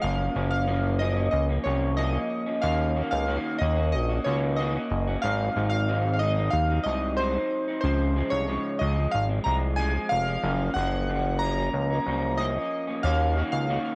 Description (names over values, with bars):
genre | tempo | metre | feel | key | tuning
indie pop, bedroom pop | 92 BPM | 4/4 | straight | unclear | A4 = 443 Hz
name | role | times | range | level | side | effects
chorused retro synth keys | melody | 0.0-13.9 s | C5 to Bb5 | -31 LUFS | equal | subtle chorus, cassette tape
electric guitar through a small old amp | accompaniment | 0.0-13.9 s | Gb2 to Gb4 | -33 LUFS | equal | subtle chorus, warbly pitch drift, cassette tape
chorused synth bass | bass | 0.0-13.8 s | F1 to Eb2 | -28 LUFS | equal | none
room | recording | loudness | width
light reverb | home recording on cassette | -26 LUFS | mono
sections
0.0-13.9 A section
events
none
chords
0.0 Gbmaj7; 2.6 Ebm7; 5.2 Ab7; 7.8 Dbmaj7; 10.4 Gbmaj7; 13.0 Ebm7